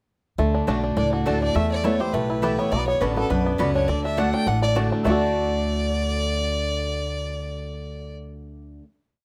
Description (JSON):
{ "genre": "bluegrass", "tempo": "206 BPM", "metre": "4/4", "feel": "swing 54% on 8ths", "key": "D major", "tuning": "A4 = 438 Hz", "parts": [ { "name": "picked steel-string acoustic guitar", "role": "accompaniment", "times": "0.4-8.8 s", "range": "E2 to F#4", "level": "-30 LUFS", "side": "equal", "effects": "none" }, { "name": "bluegrass banjo", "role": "arpeggios", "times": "0.4-8.8 s", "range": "A3 to A4", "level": "-29 LUFS", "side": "equal", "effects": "none" }, { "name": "upright bass", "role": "bass", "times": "0.4-8.8 s", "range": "A1 to E2", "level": "-29 LUFS", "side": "equal", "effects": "none" }, { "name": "mandolin", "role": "stabs", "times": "0.7-8.8 s", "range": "A3 to B5", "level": "-33 LUFS", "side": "equal", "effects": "none" }, { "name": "warm fiddle", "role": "melody", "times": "1.0-8.1 s", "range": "F#4 to G5", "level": "-30 LUFS", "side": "equal", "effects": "plate reverb" }, { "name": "lap resonator guitar", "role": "second line", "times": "1.0-8.8 s", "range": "A4 to G5", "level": "-34 LUFS", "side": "equal", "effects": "none" } ], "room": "light reverb", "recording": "none", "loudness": "-23 LUFS", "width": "mono", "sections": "0.4-5.1 A section; 5.1-7.4 final chord", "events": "none", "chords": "0.4 D; 1.6 Esus4; 2.7 Bmadd9; 3.9 D", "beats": "| 0.39 0.68 0.97 1.26 | 1.55 1.84 2.14 2.43 | 2.72 3.01 3.31 3.60 | 3.89 4.18 4.47 4.76 | 5.05 5.34 5.64 5.93 | 6.22 6.51 6.80 7.09" }